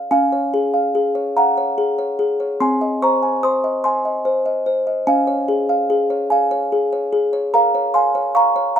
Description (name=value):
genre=classical, lullaby for music box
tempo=49 BPM (dotted quarters)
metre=6/8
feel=straight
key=Db major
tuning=A4 = 442 Hz
part: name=music box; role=solo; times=0.0-8.8 s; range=C4 to Eb6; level=-16 LUFS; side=equal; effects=none
room=light reverb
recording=rough home demo mix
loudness=-16 LUFS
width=side -8 dB against mid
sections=0.1-8.8 A section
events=none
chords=0.1 Db; 2.6 Ab/C; 5.1 Db; 7.5 Bbm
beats=| 0.11 1.36 | 2.61 3.84 | 5.07 6.30 | 7.53 8.75